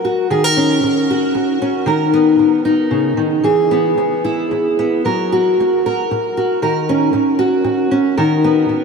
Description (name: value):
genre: folk, solo fingerstyle acoustic guitar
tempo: 115 BPM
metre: 3/4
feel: rubato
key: B major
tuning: A4 = 439 Hz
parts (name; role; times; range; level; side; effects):
- fingerpicked steel-string acoustic guitar; solo; 0.0-8.8 s; C#3 to A#4; -13 LUFS; equal; lush chorus, tape echo
room: wet huge ambient reverb, RT60 4.8 s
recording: dreamy mix soaked in reverb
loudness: -13 LUFS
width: side -5 dB against mid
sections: 0.0-8.8 A section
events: none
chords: 0.3 D#m7; 1.9 Bmaj9; 3.4 E; 5.0 F#; 6.6 D#m7; 8.2 Bmaj7/D#